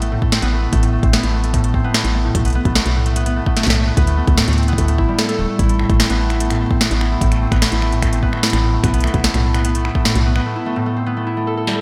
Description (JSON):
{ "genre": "IDM", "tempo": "148 BPM", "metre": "4/4", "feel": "straight", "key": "A minor", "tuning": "A4 = 441 Hz", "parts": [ { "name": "concert harp", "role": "arpeggios", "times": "0.0-11.8 s", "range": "A2 to A4", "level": "-22 LUFS", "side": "equal", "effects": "delay" }, { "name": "woody FM bass", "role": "bass", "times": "0.0-10.4 s", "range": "D1 to D2", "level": "-20 LUFS", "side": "equal", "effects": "none" }, { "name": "booming analog drum machine", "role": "drums", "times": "0.0-11.8 s", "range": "finger snaps, hi-hat, snare drum", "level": "-23 LUFS", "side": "equal", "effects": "gated reverb, delay" }, { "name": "electronic kick drum", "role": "drums", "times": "0.2-10.0 s", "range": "none", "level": "-21 LUFS", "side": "equal", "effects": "none" } ], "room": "moderate lush hall reverb, RT60 2.0 s", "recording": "bright 1980s-style digital production", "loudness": "-17 LUFS", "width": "mono", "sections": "0.0-11.8 A section", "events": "break 10.5-11.8", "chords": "0.0 Amadd9; 2.3 Asus2/B; 4.0 Dsus2; 5.6 Amadd9; 8.8 B7sus4; 10.5 Asus2" }